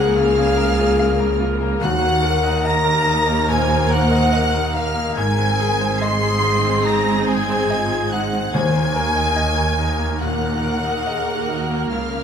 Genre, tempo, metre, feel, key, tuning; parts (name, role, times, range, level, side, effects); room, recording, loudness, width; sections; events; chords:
cinematic; 71 BPM; 4/4; rubato; Eb dorian; A4 = 440 Hz
warm studio violin section; melody; 0.0-12.2 s; F6 to C7; -27 LUFS; right 1 dB
mellow hollow concert flute; second line; 0.0-12.2 s; F5 to C6; -25 LUFS; equal
warm symphonic violin section; second line; 0.0-12.2 s; F5 to C6; -26 LUFS; equal
bright grand piano; accompaniment; 0.0-12.2 s; Db2 to F5; -26 LUFS; left 4 dB
rich symphonic viola section; accompaniment; 0.0-12.2 s; Bb3 to Bb4; -27 LUFS; right 2 dB
mellow French horn section; sustained chords; 0.0-12.2 s; Eb4 to C5; -23 LUFS; left 5 dB
warm symphonic cello section; bass; 0.0-12.2 s; Db2 to Ab2; -25 LUFS; right 3 dB
warm symphonic double bass section; bass; 0.0-12.2 s; Ab1 to Eb2; -24 LUFS; right 3 dB
timpani; percussion; 1.8-3.0, 8.5-9.8 s; Eb3; -26 LUFS; equal
moderate recital hall reverb, RT60 1.6 s; -16 LUFS; side -7 dB against mid
0.0-12.2 A section
0.0 Bbm/Db; 1.8 Ebm; 5.2 Ab; 8.5 Ebm